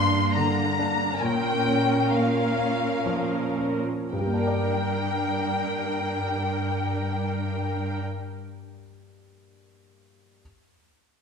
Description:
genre	cinematic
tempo	55-71 BPM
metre	3/4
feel	rubato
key	G minor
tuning	A4 = 440 Hz
part	warm studio violin section	melody	0.0-8.0 s	F5 to C6	-28 LUFS	left 5 dB	none
part	clear baby grand piano	accompaniment	0.0-10.4 s	G2 to D5	-30 LUFS	left 2 dB	none
part	rich studio viola section	accompaniment	0.0-8.0 s	Bb3 to Bb4	-29 LUFS	right 3 dB	none
part	clear studio cello section	bass	0.0-8.0 s	G2 to Bb2	-29 LUFS	right 2 dB	none
room	wet concert hall reverb, RT60 1.9 s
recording	minimal, uncompressed stereo recording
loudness	-23 LUFS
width	side -6 dB against mid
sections	0.0-4.1 A section; 4.1-7.2 B section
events	slowing down 0.0-4.1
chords	0.0 Gm; 1.2 Bbm; 4.1 Gm

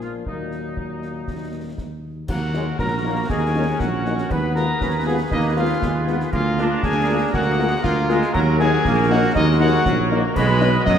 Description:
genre	military-style march for wind band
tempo	119 BPM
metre	2/4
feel	straight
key	Eb minor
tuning	A4 = 440 Hz
part	dark cornet	melody	0.0-11.0 s	D4 to D#5	-25 LUFS	right 1 dB	none
part	clear woodwind section	second line	0.0-11.0 s	Eb4 to D#5	-29 LUFS	left 2 dB	none
part	dark French horn section	accompaniment	0.0-10.7 s	Bb2 to F4	-27 LUFS	left 5 dB	none
part	dark tuba	bass	0.0-11.0 s	Bb1 to F#2	-22 LUFS	right 2 dB	none
part	concert snare drum, concert bass drum and clash cymbals	drums	0.0-11.0 s	none	-28 LUFS	left 1 dB	none
part	piccolo	second line	2.3-11.0 s	Eb5 to D#6	-28 LUFS	left 4 dB	none
part	clear trombone section	sustained chords	2.3-11.0 s	Gb3 to Eb4	-26 LUFS	right 2 dB	none
room	wet scoring stage reverb, RT60 1.5 s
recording	none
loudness	-17 LUFS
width	side -8 dB against mid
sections	0.0-2.3 A section; 2.3-11.0 A section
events	none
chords	0.3 Ebm; 4.3 Fm7b5/Eb; 6.3 Bb7/D; 8.3 Ebm; 10.4 B

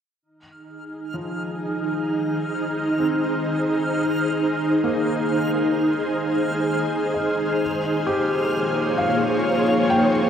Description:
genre	ambient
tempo	65 BPM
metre	4/4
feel	straight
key	Ab major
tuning	A4 = 440 Hz
part	ethereal airy pad	sustained chords	0.9-10.3 s	Bb3 to Db5	-21 LUFS	equal	ensemble chorus, built-in reverb, tremolo, shimmer reverb
part	backwards swelling texture	texture	0.8-10.3 s	F6	-31 LUFS	equal	built-in reverb, shimmer reverb
part	felt-muted upright piano	arpeggios	1.1-10.3 s	F3 to G5	-28 LUFS	equal	diffuse ambient delay, shimmer reverb
room	wet cathedral reverb, RT60 5.6 s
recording	dark, warm production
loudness	-20 LUFS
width	side -8 dB against mid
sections	0.2-10.3 A section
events	fade-in on felt piano 0.2-10.3; fade-out on synth texture 0.2-10.3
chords	0.2 Ab; 7.6 Bbm7

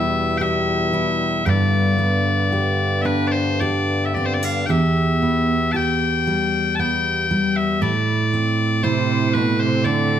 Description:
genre	celtic folk, Celtic slow air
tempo	53-60 BPM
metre	3/4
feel	rubato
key	unclear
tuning	A4 = 436 Hz
part	loud bright bagpipes	melody	0.0-10.2 s	B4 to A5	-22 LUFS	left 3 dB	none
part	fingerpicked steel-string acoustic guitar	accompaniment	0.0-10.2 s	E2 to G4	-20 LUFS	right 1 dB	none
part	hand-pumped harmonium	sustained chords	0.0-4.6 s	E2 to B3	-25 LUFS	left 1 dB	none
part	rich cello	second line	8.8-10.2 s	B2 to D3	-21 LUFS	right 6 dB	none
room	moderate recital hall reverb, RT60 1.5 s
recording	none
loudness	-17 LUFS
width	side -10 dB against mid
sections	0.0-4.7 A section; 4.7-10.2 B section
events	none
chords	0.0 Em; 1.5 G; 4.7 Em; 7.8 Am

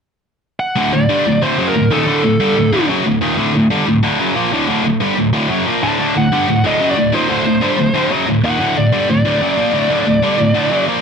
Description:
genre	metal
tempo	184 BPM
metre	4/4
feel	straight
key	unclear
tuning	A4 = 440 Hz
part	high-gain lead guitar	melody	0.6-2.9, 5.8-10.8 s	A4 to A5	-18 LUFS	equal	distortion
part	high-gain distorted guitar	riff	0.8-11.0 s	D2 to Bb3	-14 LUFS	equal	distortion
room	moderate studio reverb, RT60 0.7 s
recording	dark, warm production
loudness	-12 LUFS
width	side -6 dB against mid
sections	0.8-11.0 A section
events	none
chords	0.0 N.C.; 0.8 D

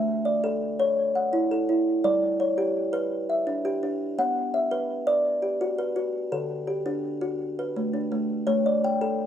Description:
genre	southern african traditional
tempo	112 BPM (dotted quarters)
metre	12/8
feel	straight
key	A mixolydian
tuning	A4 = 440 Hz
part	kalimba	solo	0.0-9.3 s	D3 to G5	-23 LUFS	equal	slapback echo
room	little or no reverb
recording	recorded outdoors, with no room sound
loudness	-23 LUFS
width	side -9 dB against mid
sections	0.0-8.5 A section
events	none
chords	0.0 A; 2.0 G; 4.2 Bm; 6.3 D; 8.5 A

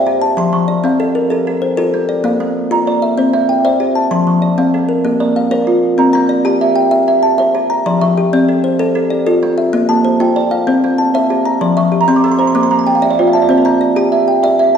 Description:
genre	southern african traditional, mbira-style interlocking cycle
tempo	128 BPM (dotted quarters)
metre	12/8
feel	straight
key	C mixolydian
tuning	A4 = 442 Hz
part	kalimba	arpeggios	0.0-14.8 s	F3 to Bb5	-13 LUFS	left 2 dB	none
part	kalimba	arpeggios	0.0-14.8 s	F3 to E6	-16 LUFS	right 4 dB	none
room	wet recital hall reverb, RT60 1.5 s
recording	recorded in a church or concert hall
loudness	-11 LUFS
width	side -7 dB against mid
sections	0.0-6.0 A section; 6.0-14.8 B section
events	kalimba fill 11.8-13.5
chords	0.4 F; 2.2 Bb; 3.2 C; 4.1 F; 5.0 Bb; 6.0 C; 7.9 F; 9.7 Bb; 10.7 C; 11.6 F; 12.5 Bb; 13.5 C

